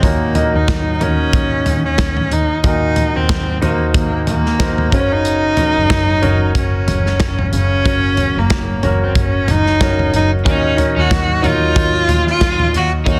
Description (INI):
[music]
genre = piano-driven pop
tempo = 92 BPM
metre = 4/4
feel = swing 56% on 16ths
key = unclear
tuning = A4 = 440 Hz
[part]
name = warm cello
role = melody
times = 0.0-13.2 s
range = Bb3 to Gb4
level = -20 LUFS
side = equal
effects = none
[part]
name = clear grand piano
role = accompaniment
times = 0.0-13.2 s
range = Bb2 to Eb5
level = -23 LUFS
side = equal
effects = none
[part]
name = warm double bass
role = bass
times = 0.0-13.2 s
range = Gb1 to Eb2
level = -21 LUFS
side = equal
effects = none
[part]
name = modern studio drum kit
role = drums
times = 0.0-13.2 s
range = hi-hat, kick drum, snare drum, toms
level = -20 LUFS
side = equal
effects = soft clipping on snare
[part]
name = crunchy overdriven guitar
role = riff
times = 10.5-13.2 s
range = Db4 to F4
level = -25 LUFS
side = equal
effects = none
[sound]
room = light reverb, small room ambience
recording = dense, heavily limited modern master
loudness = -15 LUFS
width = mono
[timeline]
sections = 0.0-13.2 A section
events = none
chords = 0.0 Ebm7; 4.9 Gb; 10.5 Ebm7